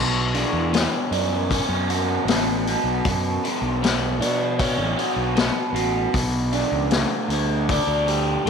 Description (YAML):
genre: psychedelic rock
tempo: 78 BPM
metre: 4/4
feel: straight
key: B minor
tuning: A4 = 440 Hz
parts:
  - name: crunchy overdriven guitar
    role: riff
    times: 0.0-8.5 s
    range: B2 to D5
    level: -23 LUFS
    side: right 1 dB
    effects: phaser
  - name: fuzz fingered electric bass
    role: bass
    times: 0.0-8.5 s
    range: E1 to B2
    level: -25 LUFS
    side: right 1 dB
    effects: overdrive
  - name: vintage drum kit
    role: drums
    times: 0.3-8.5 s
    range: hi-hat, kick drum, snare drum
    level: -25 LUFS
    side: left 4 dB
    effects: none
room: moderate echo chamber reverb, RT60 1.9 s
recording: 1960s-style stereo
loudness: -19 LUFS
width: side -6 dB against mid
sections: 0.0-8.5 A section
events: none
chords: 0.0 Bmadd9; 6.1 Gadd9